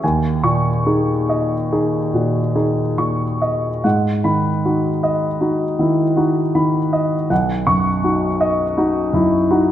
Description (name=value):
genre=classical, impressionist solo piano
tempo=45-56 BPM (dotted quarters)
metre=9/8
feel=rubato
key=G# minor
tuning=A4 = 441 Hz
part: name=warm grand piano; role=solo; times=0.0-9.7 s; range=B1 to C#6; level=-15 LUFS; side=equal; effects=none
room=moderate scoring stage reverb, RT60 1.5 s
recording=none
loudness=-16 LUFS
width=side -11 dB against mid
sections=0.0-9.7 A section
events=none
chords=0.0 D#7sus4; 3.8 G#m7; 7.3 Badd9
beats=| 0.02 1.28 2.55 | 3.84 5.04 6.18 | 7.31 8.41 9.49